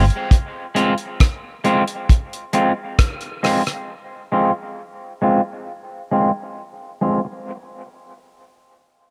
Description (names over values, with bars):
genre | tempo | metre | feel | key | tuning
dub reggae | 67 BPM | 4/4 | straight | F minor | A4 = 440 Hz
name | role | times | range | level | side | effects
electric guitar at the edge of break-up | accompaniment | 0.0-7.3 s | Ab3 to F4 | -23 LUFS | equal | lush chorus, low-pass filter, dub echo
damped 70s drum kit | drums | 0.1-3.9 s | hi-hat, kick drum, rim click | -19 LUFS | equal | none
room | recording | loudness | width
light reverb | none | -20 LUFS | mono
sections
0.0-7.5 A section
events
filter sweep on clean electric guitar 0.0-7.5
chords
0.0 Fm